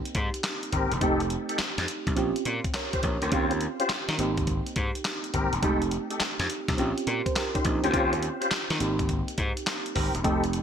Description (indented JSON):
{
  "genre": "R&B, new jack swing",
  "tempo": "104 BPM",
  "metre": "4/4",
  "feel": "swing 66% on 16ths",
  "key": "unclear",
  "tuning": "A4 = 438 Hz",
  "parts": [
    { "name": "mellow FM electric piano", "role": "accompaniment", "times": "0.0-10.6 s", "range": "Ab3 to Db5", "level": "-30 LUFS", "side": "right 4 dB", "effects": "chorus" },
    { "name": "dusty soul sampler-style drum kit", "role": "drums", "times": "0.1-10.6 s", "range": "handclaps, hi-hat, kick drum, snare drum", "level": "-30 LUFS", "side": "left 1 dB", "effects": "none" },
    { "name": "gritty slap bass", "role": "bass", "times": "0.2-10.6 s", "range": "E1 to Eb3", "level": "-30 LUFS", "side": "left 1 dB", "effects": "overdrive" },
    { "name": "tonewheel organ", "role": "stabs", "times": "0.7-10.4 s", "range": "C4 to C5", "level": "-30 LUFS", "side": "left 2 dB", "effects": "chorus vibrato, slow rotary speaker" }
  ],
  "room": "moderate plate reverb, RT60 2.1 s",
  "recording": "bright 1980s-style digital production",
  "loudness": "-25 LUFS",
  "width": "side -8 dB against mid",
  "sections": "0.0-10.6 A section",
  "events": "none",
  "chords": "0.0 Abmaj9; 1.0 F9; 2.2 Bbm69; 3.3 Eb13; 4.2 Abmaj9; 5.6 F9; 6.8 Bbm69; 7.9 Eb13; 8.8 Abmaj9"
}